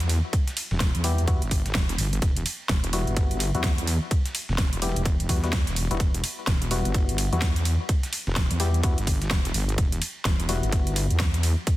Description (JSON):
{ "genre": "bass house", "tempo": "127 BPM", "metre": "4/4", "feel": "swing 61% on 16ths", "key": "E minor", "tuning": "A4 = 440 Hz", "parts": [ { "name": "wobble bass", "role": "bass", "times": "0.0-11.6 s", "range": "E1 to E2", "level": "-25 LUFS", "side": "equal", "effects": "chorus, sidechain pumping" }, { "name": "big-room dance drum kit", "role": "drums", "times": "0.0-11.8 s", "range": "hi-hat, snare drum", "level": "-30 LUFS", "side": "right 1 dB", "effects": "overdrive, small room reverb" }, { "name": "dusty soul sampler-style drum kit", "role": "drums", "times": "0.0-11.8 s", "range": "hi-hat, ride cymbal, snare drum", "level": "-38 LUFS", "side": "right 2 dB", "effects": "high-pass filter on cymbals, small room reverb, high-pass filter on snare, high-pass filter on hats" }, { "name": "electronic kick drum", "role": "drums", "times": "0.3-11.8 s", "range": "none", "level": "-24 LUFS", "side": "equal", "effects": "small room reverb" }, { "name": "percussive organ stab", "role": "stabs", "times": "1.0-11.1 s", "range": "G3 to G4", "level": "-33 LUFS", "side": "left 4 dB", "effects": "chorus, sidechain pumping, ping-pong delay" } ], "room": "little or no reverb", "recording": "dense, heavily limited modern master", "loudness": "-22 LUFS", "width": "side -16 dB against mid", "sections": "0.0-11.8 A section", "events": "none", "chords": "0.0 Emadd9", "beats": "| 0.33 0.80 1.28 1.75 | 2.22 2.69 3.17 3.64 | 4.11 4.58 5.05 5.53 | 6.00 6.47 6.95 7.42 | 7.89 8.36 8.84 9.31 | 9.78 10.25 10.72 11.20 | 11.67" }